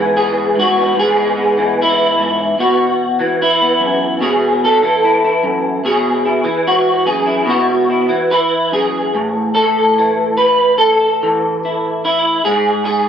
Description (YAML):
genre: folk, solo fingerstyle acoustic guitar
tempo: 74 BPM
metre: 4/4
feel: straight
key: unclear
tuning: A4 = 441 Hz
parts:
  - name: electric guitar through a small old amp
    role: solo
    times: 0.0-13.1 s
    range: F#2 to B4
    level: -12 LUFS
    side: equal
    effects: ensemble chorus
room: light reverb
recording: close, detailed microphones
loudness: -12 LUFS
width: side -8 dB against mid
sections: 0.0-9.2 A section; 9.2-13.1 B section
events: none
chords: 0.0 E/G#; 2.6 Bsus4; 9.2 A5; 12.5 N.C.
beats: 0.15 0.97 1.78 | 2.59 3.40 4.22 5.03 | 5.84 6.65 7.48 8.31 | 9.15 9.99 10.81 11.63 | 12.45